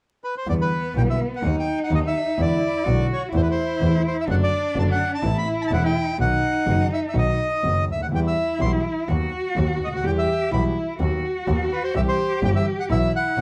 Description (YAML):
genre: tango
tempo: 126 BPM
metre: 4/4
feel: rubato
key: E harmonic minor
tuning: A4 = 440 Hz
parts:
  - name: bandoneon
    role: melody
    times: 0.2-13.4 s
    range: B4 to C6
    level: -28 LUFS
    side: equal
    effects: none
  - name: warm cello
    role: second line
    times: 0.5-13.4 s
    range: B3 to G4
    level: -28 LUFS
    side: equal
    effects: none
  - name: dark concert grand piano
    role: accompaniment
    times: 0.5-13.4 s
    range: E1 to G4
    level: -28 LUFS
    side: equal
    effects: none
  - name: clear double bass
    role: bass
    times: 0.5-13.4 s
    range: E1 to E2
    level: -27 LUFS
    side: equal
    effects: none
room: moderate studio reverb, RT60 0.5 s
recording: vinyl crackle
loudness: -22 LUFS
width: mono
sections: 0.5-13.4 A section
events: none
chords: 0.5 Em7; 1.4 B/D#; 2.4 E7; 3.3 Am/E; 4.3 D/F#; 5.2 Amadd9; 6.2 B; 8.1 Em; 9.1 B/D#; 10.0 Em; 11.0 B/D#; 11.9 C; 12.9 Bsus4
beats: | 0.47 0.95 1.43 1.91 | 2.38 2.86 3.33 3.80 | 4.28 4.75 5.22 5.70 | 6.18 6.66 7.14 7.62 | 8.11 8.60 9.08 9.56 | 10.03 10.51 10.99 11.46 | 11.94 12.41 12.89 13.37